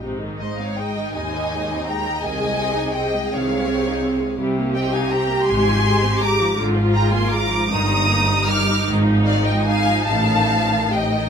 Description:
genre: classical, slow romantic movement for string orchestra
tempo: 54 BPM (dotted quarters)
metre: 6/8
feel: uneven beats, rubato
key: Ab major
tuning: A4 = 440 Hz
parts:
  - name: warm symphonic violin section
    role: melody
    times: 0.0-11.3 s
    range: Eb5 to F6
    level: -24 LUFS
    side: left 1 dB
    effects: none
  - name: warm symphonic violin section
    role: second line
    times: 0.0-11.3 s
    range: C5 to D6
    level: -25 LUFS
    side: left 1 dB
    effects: none
  - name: rich symphonic viola section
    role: accompaniment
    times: 0.0-11.3 s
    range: C3 to Ab4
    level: -23 LUFS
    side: equal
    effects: none
  - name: rich chamber cello section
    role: bass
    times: 0.0-11.1 s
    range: Eb2 to C3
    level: -24 LUFS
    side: right 1 dB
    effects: none
  - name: rich symphonic double bass section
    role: bass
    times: 0.0-11.2 s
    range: G1 to Eb2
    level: -24 LUFS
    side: right 1 dB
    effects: none
room: moderate studio reverb, RT60 0.6 s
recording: none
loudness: -17 LUFS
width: side -7 dB against mid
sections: 0.0-11.3 A section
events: none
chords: 0.0 Ab; 2.2 Ab/C; 4.4 Cm7; 5.5 Fm/Ab; 6.6 Bb7/Ab; 7.7 Eb/G; 8.9 Fm7/Ab; 10.1 F7/A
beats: | 0.03 1.15 | 2.23 3.31 | 4.39 5.47 | 6.58 7.70 | 8.86 10.06

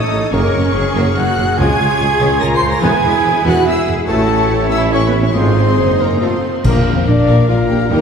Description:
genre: cinematic, heroic adventure film score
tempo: 144 BPM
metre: 3/4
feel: straight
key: unclear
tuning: A4 = 440 Hz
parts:
  - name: clear symphonic violin section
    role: melody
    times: 0.0-8.0 s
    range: Bb4 to C7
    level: -25 LUFS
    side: left 5 dB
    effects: none
  - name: clear clarinet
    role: second line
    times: 0.0-8.0 s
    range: E4 to Bb4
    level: -26 LUFS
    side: left 2 dB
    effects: none
  - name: clear symphonic violin section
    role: second line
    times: 0.0-8.0 s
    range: Ab3 to Bb5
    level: -28 LUFS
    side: left 3 dB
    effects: none
  - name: mellow hollow silver concert flute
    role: second line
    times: 0.0-8.0 s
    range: A4 to C6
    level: -24 LUFS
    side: equal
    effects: none
  - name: warm oboe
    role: second line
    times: 0.0-8.0 s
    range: Bb4 to F5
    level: -27 LUFS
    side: left 1 dB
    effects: none
  - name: rich symphonic viola section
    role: accompaniment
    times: 0.0-8.0 s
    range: A3 to C5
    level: -20 LUFS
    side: right 1 dB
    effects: none
  - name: dark trumpet section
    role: stabs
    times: 0.0-8.0 s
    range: A4 to C6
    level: -20 LUFS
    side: right 3 dB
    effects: none
  - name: rich symphonic cello section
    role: bass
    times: 0.0-8.0 s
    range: Bb2 to Bb4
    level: -23 LUFS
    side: equal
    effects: none
  - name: rich symphonic double bass section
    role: bass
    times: 0.1-8.0 s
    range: F1 to E2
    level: -18 LUFS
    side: right 1 dB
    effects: none
  - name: warm tuba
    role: bass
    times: 0.1-8.0 s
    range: E1 to Eb2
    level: -20 LUFS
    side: right 1 dB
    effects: none
  - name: clear trombone section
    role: sustained chords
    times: 0.3-8.0 s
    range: Eb3 to B3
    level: -28 LUFS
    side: right 1 dB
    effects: none
  - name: mellow French horn section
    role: sustained chords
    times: 0.3-8.0 s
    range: Bb3 to Ab4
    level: -21 LUFS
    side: left 4 dB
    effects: none
  - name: cymbal swell, clash cymbals and concert bass drum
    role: percussion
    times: 4.1-7.4 s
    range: none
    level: -20 LUFS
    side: left 1 dB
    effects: none
  - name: timpani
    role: percussion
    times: 6.7-7.2 s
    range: Bb2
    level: -21 LUFS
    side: left 1 dB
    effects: none
room: wet scoring stage reverb, RT60 1.9 s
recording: heard from further back in the room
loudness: -11 LUFS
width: side -6 dB against mid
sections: 0.0-6.7 A section; 6.7-8.0 B section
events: band accent 6.7-7.1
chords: 0.3 Gbadd9; 1.6 Db; 2.8 E; 4.1 A; 5.3 Ab; 6.2 F7; 6.7 Bb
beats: | 0.33 0.75 1.16 | 1.58 2.00 2.41 | 2.83 3.25 3.67 | 4.08 4.50 4.92 | 5.35 5.78 6.22 | 6.65 7.07 7.49 | 7.91

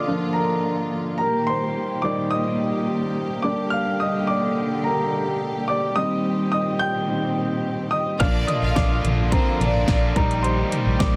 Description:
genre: piano-driven pop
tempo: 107 BPM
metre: 4/4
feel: straight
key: Bb major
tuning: A4 = 438 Hz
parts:
  - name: warm grand piano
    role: accompaniment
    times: 0.0-11.2 s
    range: F3 to G6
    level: -26 LUFS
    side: equal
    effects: none
  - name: warm studio string section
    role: sustained chords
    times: 0.0-11.2 s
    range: Bb2 to G4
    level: -29 LUFS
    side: equal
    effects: none
  - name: clear studio violin section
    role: second line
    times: 8.2-10.1 s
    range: C4 to F5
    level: -30 LUFS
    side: equal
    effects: tape echo
  - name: overdriven electric guitar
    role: riff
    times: 8.2-11.2 s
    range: Bb2 to G4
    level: -32 LUFS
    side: equal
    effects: none
  - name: vintage muted fingered electric bass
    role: bass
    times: 8.2-11.2 s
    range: Bb1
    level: -26 LUFS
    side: equal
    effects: none
  - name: pop drum kit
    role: drums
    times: 8.2-11.1 s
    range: hi-hat, kick drum, snare drum, toms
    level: -25 LUFS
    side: equal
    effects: none
room: moderate studio reverb, RT60 0.7 s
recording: dense, heavily limited modern master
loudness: -22 LUFS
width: mono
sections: 0.0-11.2 A section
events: grand piano solo 0.0-11.2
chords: 0.0 Bb; 1.2 Eb/Bb; 3.4 Gm; 6.0 Cm/Bb; 8.2 Bb; 10.2 Eb/Bb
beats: 0.35 0.91 | 1.48 2.04 2.60 3.16 | 3.72 4.28 4.84 5.40 | 5.96 6.52 7.08 7.64 | 8.20 8.76 9.32 9.88 | 10.45 11.01

